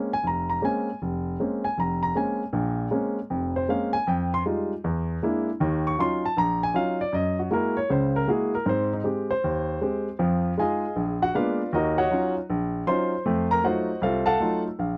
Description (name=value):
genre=jazz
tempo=157 BPM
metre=4/4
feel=swing 65% on 8ths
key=Bb minor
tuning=A4 = 440 Hz
part: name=warm baby grand piano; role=solo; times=0.0-15.0 s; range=F1 to Db6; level=-26 LUFS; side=equal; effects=none
room=little or no reverb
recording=dry, close 1970s-style studio recording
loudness=-25 LUFS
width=mono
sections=0.0-2.5 A section; 2.5-14.8 B section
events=none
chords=0.0 Bbm9; 4.1 Fm9; 4.8 E7#11; 5.6 Ebm9; 7.1 Gb9; 8.7 Abmaj7; 10.2 Fm7; 11.0 Bb7b9; 11.7 Ebm9; 13.3 F7b9